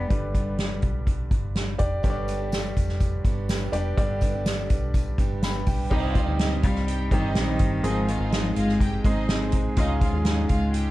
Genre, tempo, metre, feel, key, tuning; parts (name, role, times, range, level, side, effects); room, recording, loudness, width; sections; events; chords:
piano-driven pop; 124 BPM; 4/4; straight; C minor; A4 = 440 Hz
dark cello; melody; 0.0-1.0, 6.6-10.9 s; Eb3 to Ab3; -29 LUFS; left 2 dB
clear grand piano; accompaniment; 0.0-10.9 s; G2 to B5; -29 LUFS; equal
vintage muted fingered electric bass; bass; 0.0-10.9 s; F1 to Eb2; -28 LUFS; equal
soft-mallet drum kit; drums; 0.1-10.9 s; crash cymbal, hi-hat, kick drum, snare drum; -25 LUFS; equal; vintage 12-bit sampler grit
picked steel-string acoustic guitar; riff; 2.0-10.9 s; Ab2 to Ab4; -36 LUFS; right 7 dB
tambourine; percussion; 2.0-5.8 s; -48 LUFS; left 5 dB
warm studio violin section; second line; 5.9-10.9 s; Eb4 to G5; -35 LUFS; right 1 dB
light reverb; cassette tape; -22 LUFS; side -17 dB against mid
0.0-5.9 A section; 5.9-10.9 B section
0.0 G; 5.9 Cm; 7.8 Ab; 9.8 Db